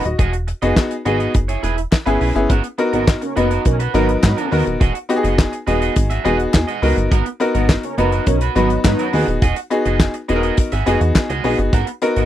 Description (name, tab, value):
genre	early-eighties boogie funk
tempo	104 BPM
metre	4/4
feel	straight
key	G# minor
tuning	A4 = 438 Hz
part	bright concert grand piano	accompaniment	0.0-12.3 s	B3 to D#5	-19 LUFS	left 2 dB	none
part	electric guitar at the edge of break-up	riff	0.0-12.3 s	B3 to E5	-24 LUFS	right 7 dB	wide subtle chorus
part	plucky analog bass	bass	0.0-12.3 s	D#1 to G#2	-20 LUFS	equal	none
part	damped 70s drum kit	drums	0.1-12.3 s	handclaps, hi-hat, kick drum, snare drum	-17 LUFS	equal	none
part	group handclap	percussion	0.8-11.3 s	none	-30 LUFS	left 10 dB	none
part	mellow synth brass	second line	2.9-12.3 s	F#3 to D#5	-23 LUFS	equal	chorus
room	little or no reverb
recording	dry, close 1970s-style studio recording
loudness	-15 LUFS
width	side -12 dB against mid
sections	0.0-2.5 A section; 2.5-12.3 B section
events	none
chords	0.2 Emaj9; 1.3 F#9sus4; 2.5 G#m9; 4.8 Emaj9; 7.1 G#m9; 9.4 Emaj9; 11.7 G#m9